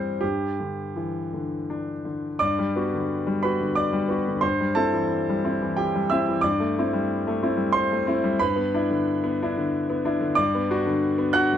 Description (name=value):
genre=neoclassical minimalist piano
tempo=90 BPM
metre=3/4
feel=rubato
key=G major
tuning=A4 = 444 Hz
part: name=clear concert grand piano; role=solo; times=0.0-11.6 s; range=G2 to F#6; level=-22 LUFS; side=equal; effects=none
room=little or no reverb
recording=close, detailed microphones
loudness=-22 LUFS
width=side -9 dB against mid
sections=0.0-2.4 A section; 2.4-11.6 A section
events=none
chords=0.2 Em7/G; 2.4 Gmaj7; 4.4 C/G; 6.4 Am7/G; 8.4 Em7/G; 10.4 Gmaj7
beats=| 0.21 0.94 1.67 | 2.40 3.09 3.77 | 4.43 5.11 5.78 | 6.44 7.09 7.74 | 8.40 9.06 9.72 | 10.38 11.04